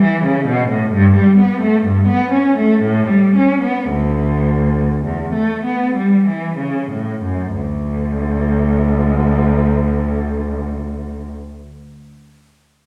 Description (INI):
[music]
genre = classical, baroque-style suite movement for unaccompanied cello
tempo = 45-66 BPM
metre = 3/4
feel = rubato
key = D major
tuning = A4 = 439 Hz
[part]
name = warm cello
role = solo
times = 0.0-11.3 s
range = D2 to C#4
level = -16 LUFS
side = equal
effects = none
[sound]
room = wet recital hall reverb, RT60 1.6 s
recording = none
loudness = -16 LUFS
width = mono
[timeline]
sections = 0.0-7.5 A section; 7.5-11.1 B section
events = slowing down 0.0-7.5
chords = none